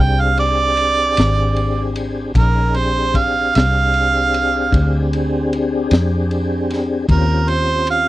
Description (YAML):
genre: slow blues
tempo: 51 BPM (dotted quarters)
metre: 12/8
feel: straight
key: Bb mixolydian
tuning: A4 = 441 Hz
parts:
  - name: warm harmonica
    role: second line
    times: 0.0-8.1 s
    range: Bb4 to G5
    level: -17 LUFS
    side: right 4 dB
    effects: overdrive
  - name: tonewheel organ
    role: sustained chords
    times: 0.0-8.1 s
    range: C4 to Bb4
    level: -22 LUFS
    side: left 2 dB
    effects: slow rotary speaker, chorus vibrato
  - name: vintage muted fingered electric bass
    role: bass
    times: 0.0-8.1 s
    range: Ab1 to F2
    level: -18 LUFS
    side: equal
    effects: none
  - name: crunchy breakbeat drum kit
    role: drums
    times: 0.4-8.1 s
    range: kick drum, ride cymbal, snare drum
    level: -20 LUFS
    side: left 1 dB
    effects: none
room: little or no reverb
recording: dry, close 1970s-style studio recording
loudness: -14 LUFS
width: side -16 dB against mid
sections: 0.0-8.1 A section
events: harmonica solo 0.0-8.1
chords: 0.0 Bb13; 7.1 Eb13